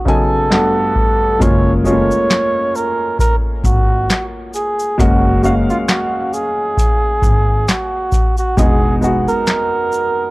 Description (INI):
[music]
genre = lo-fi hip hop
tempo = 67 BPM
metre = 4/4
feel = swing 57% on 16ths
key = F# major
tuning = A4 = 440 Hz
[part]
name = breathy flugelhorn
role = melody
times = 0.0-10.3 s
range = E#4 to C#5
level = -18 LUFS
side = right 2 dB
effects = low-pass filter
[part]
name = warm upright piano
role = accompaniment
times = 0.0-10.3 s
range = G2 to G#5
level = -19 LUFS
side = left 1 dB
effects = low-pass filter
[part]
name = booming analog drum machine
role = drums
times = 0.1-10.2 s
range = handclaps, hi-hat, kick drum, shaker, snare drum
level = -16 LUFS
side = equal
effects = none
[part]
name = upright bass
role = bass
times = 1.4-9.2 s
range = E1 to G#1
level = -17 LUFS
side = equal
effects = none
[part]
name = egg shaker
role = percussion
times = 1.4-10.2 s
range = none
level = -34 LUFS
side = left 2 dB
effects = none
[sound]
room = small room ambience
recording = dry, gritty hardware recording, cassette tape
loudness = -13 LUFS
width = side -20 dB against mid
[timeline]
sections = 0.0-1.4 A section; 1.4-10.3 B section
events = none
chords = 0.0 C#7sus4; 0.5 Gmaj9; 1.4 F#maj9; 8.6 Emaj9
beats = 0.51 | 1.41 2.30 3.20 4.09 | 4.99 5.88 6.78 7.67 | 8.57 9.47